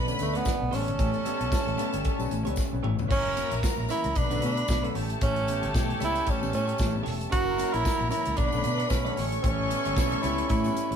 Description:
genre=disco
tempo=114 BPM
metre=4/4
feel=swing 56% on 16ths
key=unclear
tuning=A4 = 440 Hz
part: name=rich studio string section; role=second line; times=0.0-11.0 s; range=A4 to C#6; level=-35 LUFS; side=left 1 dB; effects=none
part: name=semi-hollow electric guitar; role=accompaniment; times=0.0-10.9 s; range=A3 to D5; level=-39 LUFS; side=right 3 dB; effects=spring reverb
part: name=clear French horn section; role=sustained chords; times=0.0-11.0 s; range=F#3 to A#4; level=-36 LUFS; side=equal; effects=none
part: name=vintage muted fingered electric bass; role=bass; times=0.0-11.0 s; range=E1 to B2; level=-31 LUFS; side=equal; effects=none
part: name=warm concert grand piano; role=accompaniment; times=0.1-10.8 s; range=A2 to C#4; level=-36 LUFS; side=left 4 dB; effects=none
part: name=modern studio drum kit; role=drums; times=0.1-11.0 s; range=crash cymbal, hi-hat, kick drum, snare drum, toms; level=-30 LUFS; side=equal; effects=none
part: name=tambourine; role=percussion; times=0.1-10.9 s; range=none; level=-45 LUFS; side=left 5 dB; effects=none
part: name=breathy tenor saxophone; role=melody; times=0.2-11.0 s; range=A3 to F#4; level=-30 LUFS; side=right 2 dB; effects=none
part: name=clear horn section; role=stabs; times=3.1-11.0 s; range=E3 to C#5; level=-37 LUFS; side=left 3 dB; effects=none
room=moderate small room reverb, RT60 0.5 s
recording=band playing live in one room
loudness=-24 LUFS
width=side -8 dB against mid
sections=0.0-3.1 A section; 3.1-11.0 B section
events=drum fill 2.6-3.1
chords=0.0 Bm7; 0.7 A7; 3.1 F#7; 4.2 Bm7; 5.0 A7; 7.3 F#7; 8.4 Bm7; 9.2 A7

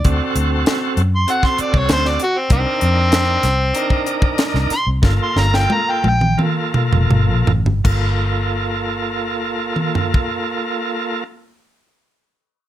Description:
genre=straight-eighth soul blues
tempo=78-98 BPM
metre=4/4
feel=straight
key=G minor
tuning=A4 = 441 Hz
part: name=overdriven harmonica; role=melody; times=0.0-6.4 s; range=C4 to C6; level=-19 LUFS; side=equal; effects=plate reverb
part: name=bright tonewheel organ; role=accompaniment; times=0.0-11.2 s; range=Bb3 to Bb4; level=-22 LUFS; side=right 2 dB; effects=slow rotary speaker, overdrive
part: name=vintage muted fingered electric bass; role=bass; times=0.0-11.2 s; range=F1 to F#2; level=-18 LUFS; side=equal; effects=none
part: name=tight funk drum kit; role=drums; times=0.0-10.3 s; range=crash cymbal, hi-hat, kick drum, snare drum, toms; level=-19 LUFS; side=equal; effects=none
room=light reverb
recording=none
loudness=-15 LUFS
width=side -12 dB against mid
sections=0.0-7.8 A section; 7.8-10.9 B section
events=harmonica solo 0.0-7.8; slowing down 2.5-7.8; drum fill 5.0-7.8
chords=0.0 D7; 2.5 Cm7; 5.0 Gm7

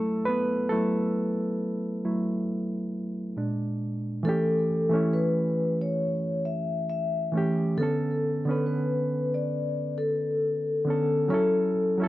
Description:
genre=hip hop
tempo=68 BPM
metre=4/4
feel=swing 56% on 16ths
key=unclear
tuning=A4 = 442 Hz
part: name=reed electric piano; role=accompaniment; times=0.0-12.1 s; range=A#2 to B4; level=-26 LUFS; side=right 1 dB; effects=low-pass filter
part: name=vibraphone with soft mallets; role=melody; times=4.2-12.1 s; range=A4 to E5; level=-27 LUFS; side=left 2 dB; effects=none
room=wet small room reverb, RT60 0.5 s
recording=cassette tape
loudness=-25 LUFS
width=side -15 dB against mid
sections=0.0-4.2 A section; 4.2-12.1 B section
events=reed electric piano solo 0.0-4.2; filter sweep on reed electric piano 0.0-4.2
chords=0.0 F#m7; 3.4 A#7; 4.2 A7; 7.8 Bm9; 11.3 F#m7

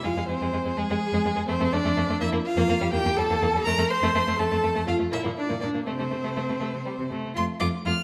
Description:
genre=quick classical-period movement for string quartet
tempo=82 BPM (dotted quarters)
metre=6/8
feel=straight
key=F major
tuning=A4 = 436 Hz
part: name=warm violin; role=melody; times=0.0-8.0 s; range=Ab4 to F6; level=-31 LUFS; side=equal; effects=none
part: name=rich violin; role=second line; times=0.0-7.9 s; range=G3 to F4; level=-32 LUFS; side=equal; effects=none
part: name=warm viola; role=accompaniment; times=0.0-8.0 s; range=Ab3 to C5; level=-30 LUFS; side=equal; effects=none
part: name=rich cello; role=bass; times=0.0-7.9 s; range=E2 to C3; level=-32 LUFS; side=equal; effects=none
room=wet recital hall reverb, RT60 1.9 s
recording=none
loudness=-25 LUFS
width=mono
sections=0.0-7.4 A section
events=none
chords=0.1 Fm; 1.5 F; 2.2 Gm7/F (rootless); 2.9 Gsus2/E; 3.7 F; 5.1 Bb; 5.9 Am/C; 7.4 F

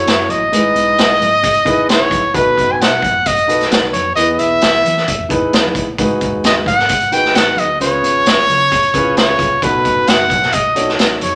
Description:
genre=uptempo 1960s-style soul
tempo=132 BPM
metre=4/4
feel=straight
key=unclear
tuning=A4 = 440 Hz
part: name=clear trumpet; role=melody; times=0.0-11.4 s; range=B4 to G#5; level=-16 LUFS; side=equal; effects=none
part: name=warm grand piano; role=accompaniment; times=0.0-11.3 s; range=G#2 to C#5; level=-21 LUFS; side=equal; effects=none
part: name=fingered electric bass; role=bass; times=0.0-11.4 s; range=F#1 to E3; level=-32 LUFS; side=equal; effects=none
part: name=raw garage drum kit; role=drums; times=0.1-11.3 s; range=hi-hat, kick drum, snare drum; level=-18 LUFS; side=equal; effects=none
part: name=congas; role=percussion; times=0.1-11.3 s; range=none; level=-34 LUFS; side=equal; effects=none
room=moderate large studio reverb, RT60 1.1 s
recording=none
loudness=-14 LUFS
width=mono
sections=0.0-11.4 A section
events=none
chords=0.0 F#m7; 0.5 Emaj7/G#; 2.3 B7; 4.2 Emaj7; 6.0 G#m7; 7.8 C#7; 9.6 B7

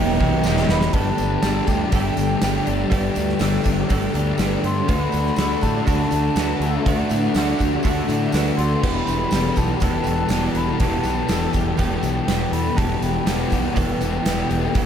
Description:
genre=rock, shoegaze and dream pop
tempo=122 BPM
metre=4/4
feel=straight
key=G major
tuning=A4 = 440 Hz
part: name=breathy mellow concert flute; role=melody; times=0.0-14.9 s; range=D5 to C6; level=-28 LUFS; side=left 1 dB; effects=ping-pong delay
part: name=picked twelve-string acoustic guitar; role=arpeggios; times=0.0-14.9 s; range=G4 to B4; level=-32 LUFS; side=left 6 dB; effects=ensemble chorus, ping-pong delay
part: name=direct-recorded clean electric guitar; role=riff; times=0.0-14.9 s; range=E2 to G4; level=-25 LUFS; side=right 8 dB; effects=reverse reverb
part: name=thick fuzz guitar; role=riff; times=0.0-14.9 s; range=E2 to D4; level=-23 LUFS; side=left 6 dB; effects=distortion, analog chorus
part: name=fuzz fingered electric bass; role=bass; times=0.0-14.9 s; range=E1 to A2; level=-25 LUFS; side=equal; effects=overdrive
part: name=gated 80s drum kit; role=drums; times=0.2-14.9 s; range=crash cymbal, hi-hat, kick drum, snare drum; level=-24 LUFS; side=right 1 dB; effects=none
part: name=tambourine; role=percussion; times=0.4-14.8 s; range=none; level=-41 LUFS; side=right 7 dB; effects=none
room=moderate huge ambient reverb, RT60 3.9 s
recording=dreamy mix soaked in reverb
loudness=-18 LUFS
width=side -8 dB against mid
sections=0.9-14.9 A section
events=drum fill 0.4-0.9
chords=0.0 Em; 0.9 Gsus2; 4.9 D; 8.8 Em

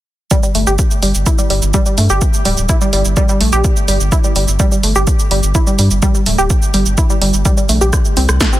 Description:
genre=melodic techno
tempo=126 BPM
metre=4/4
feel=straight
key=G dorian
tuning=A4 = 439 Hz
part: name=wide unison pluck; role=arpeggios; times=0.3-8.6 s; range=G3 to A4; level=-17 LUFS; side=right 1 dB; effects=sidechain pumping, tape echo
part: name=electronic kick drum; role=drums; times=0.3-8.5 s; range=none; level=-14 LUFS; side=equal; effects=none
part: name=punchy analog drum machine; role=drums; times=0.3-8.6 s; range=hi-hat, rim click, shaker, snare drum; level=-19 LUFS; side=right 2 dB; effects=sidechain pumping on perc, sidechain pumping on hats, soft clipping on snare
part: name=round analog bass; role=bass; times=0.6-8.4 s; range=D1 to G2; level=-14 LUFS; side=equal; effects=sidechain pumping
room=little or no reverb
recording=dense, heavily limited modern master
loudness=-11 LUFS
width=side -15 dB against mid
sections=0.3-8.6 A section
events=none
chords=none

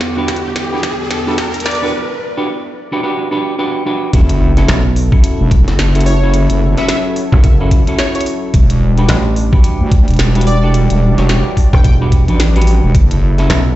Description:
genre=glitch hop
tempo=109 BPM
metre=4/4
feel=swing 59% on 16ths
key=E dorian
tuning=A4 = 439 Hz
part: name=warm analog pad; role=sustained chords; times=0.0-13.8 s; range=E2 to A4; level=-24 LUFS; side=equal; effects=chorus, sidechain pumping
part: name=glitchy drum kit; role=drums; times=0.0-13.6 s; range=hi-hat, snare drum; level=-21 LUFS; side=equal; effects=high-pass filter on snare, high-pass filter on hats, high-pass filter on room
part: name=riser and sub drop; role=sound effects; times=0.0-6.3 s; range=none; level=-20 LUFS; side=equal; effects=none
part: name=ethereal airy pad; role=texture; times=0.0-12.9 s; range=B3 to D5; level=-28 LUFS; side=right 2 dB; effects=ensemble chorus, built-in reverb, sidechain pumping
part: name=semi-hollow electric guitar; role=stabs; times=0.2-13.6 s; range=C#4 to C#5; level=-19 LUFS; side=equal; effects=sidechain pumping, tape echo
part: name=electronic kick drum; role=drums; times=0.3-13.1 s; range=none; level=-9 LUFS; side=equal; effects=high-pass filter on kick
part: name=plucky unison lead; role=melody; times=1.7-1.9, 6.1-11.9 s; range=C#5 to G5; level=-24 LUFS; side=right 1 dB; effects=analog chorus, tape echo
part: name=wobble bass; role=bass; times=4.1-13.5 s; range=E1 to D2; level=-11 LUFS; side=equal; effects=chorus, overdrive
part: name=dry thumbed slap bass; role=bass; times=4.7-13.8 s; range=E1 to B1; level=-13 LUFS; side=equal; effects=tube saturation
room=little or no reverb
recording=played on a big sound system in a bare room, large studio reverb, nothing above 8.0 kHz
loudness=-10 LUFS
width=side -15 dB against mid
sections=0.0-4.1 A section; 4.1-13.8 B section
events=build-up 0.0-4.1; drum fill 0.0-1.9; riser 0.0-1.9; drop 4.1-13.8; impact 4.1-6.3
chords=0.0 Em7; 4.1 F#m7; 8.5 Em7; 12.9 F#m7

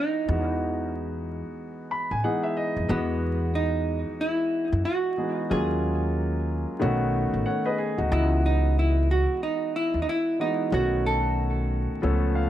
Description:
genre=hip hop, jazz-hop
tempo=92 BPM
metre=4/4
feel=swing 60% on 16ths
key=E major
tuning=A4 = 440 Hz
part: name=vintage hollow-body jazz guitar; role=melody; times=0.0-12.5 s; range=B3 to A4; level=-27 LUFS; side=right 2 dB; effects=analog delay
part: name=warm concert grand piano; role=accompaniment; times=0.0-12.5 s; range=D#3 to B5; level=-28 LUFS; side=left 1 dB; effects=none
part: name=upright bass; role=bass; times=0.3-12.4 s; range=A1 to F#2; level=-26 LUFS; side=equal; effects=none
room=light reverb, small room ambience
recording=vinyl crackle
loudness=-23 LUFS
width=side -12 dB against mid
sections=0.0-2.9 A section; 2.9-12.5 A section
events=grand piano fill 1.6-2.9, 7.1-8.1, 12.0-12.5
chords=0.0 Emaj9; 5.5 D#m11; 6.8 B7; 8.1 C#m11; 10.7 B7

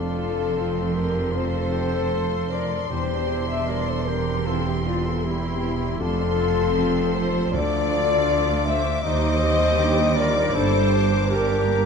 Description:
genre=cinematic, emotional film score for orchestra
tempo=78 BPM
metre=4/4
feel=rubato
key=F major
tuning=A4 = 440 Hz
part: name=warm symphonic violin section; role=melody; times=0.0-11.9 s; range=C6 to D6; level=-33 LUFS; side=left 3 dB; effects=none
part: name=concert flute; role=second line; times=0.0-11.9 s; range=D4 to C5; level=-32 LUFS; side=left 2 dB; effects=none
part: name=dark cor anglais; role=second line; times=0.0-11.9 s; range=C4 to A4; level=-36 LUFS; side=right 2 dB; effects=none
part: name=rich symphonic violin section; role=second line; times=0.0-11.9 s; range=F4 to E5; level=-32 LUFS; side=left 2 dB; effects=none
part: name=clear symphonic viola section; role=accompaniment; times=0.0-11.9 s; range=F3 to C5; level=-34 LUFS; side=right 2 dB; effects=none
part: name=warm grand piano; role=accompaniment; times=0.0-11.9 s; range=D2 to G4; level=-32 LUFS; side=left 3 dB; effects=none
part: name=warm French horn section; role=sustained chords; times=0.0-11.9 s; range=F4 to E5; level=-25 LUFS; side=left 4 dB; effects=none
part: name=clear symphonic cello section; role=bass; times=0.0-11.9 s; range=D2 to G2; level=-28 LUFS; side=right 3 dB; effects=none
part: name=rich studio double bass section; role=bass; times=0.0-11.9 s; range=E1 to Eb2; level=-26 LUFS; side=right 4 dB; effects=none
room=moderate scoring stage reverb, RT60 1.9 s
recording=dark, warm production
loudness=-20 LUFS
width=side -6 dB against mid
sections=0.0-11.9 A section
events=none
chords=0.0 F; 2.9 C/E; 6.0 F; 7.5 Dm; 9.1 Cmadd9/Eb; 10.6 Gm

